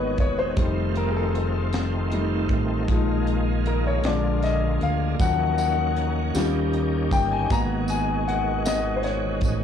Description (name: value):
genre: slow gospel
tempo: 52 BPM (dotted quarters)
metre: 6/8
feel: straight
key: Eb minor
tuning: A4 = 443 Hz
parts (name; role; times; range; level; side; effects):
- clear baby grand piano; accompaniment; 0.0-9.6 s; D3 to Bb5; -25 LUFS; left 4 dB; plate reverb
- bright tonewheel organ; sustained chords; 0.0-9.6 s; Cb3 to Gb5; -28 LUFS; right 4 dB; slow rotary speaker, overdrive, chorus vibrato, plate reverb
- fingered electric bass; bass; 0.0-9.6 s; Fb1 to Eb2; -26 LUFS; equal; transformer saturation
- crisp fusion drum kit; drums; 0.2-9.6 s; hi-hat, kick drum, snare drum; -28 LUFS; equal; vintage 12-bit sampler grit
- tambourine; percussion; 5.2-9.6 s; none; -40 LUFS; right 3 dB; none
room: light reverb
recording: dry, gritty hardware recording, transformer saturation, studio ambience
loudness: -21 LUFS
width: side -8 dB against mid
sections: 0.0-9.6 A section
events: grand piano solo 0.0-9.6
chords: 0.0 Abm7; 0.6 F7; 2.9 Bb7sus4; 4.0 Bb7; 5.2 Ebm7; 6.4 Eb7; 7.5 Abm7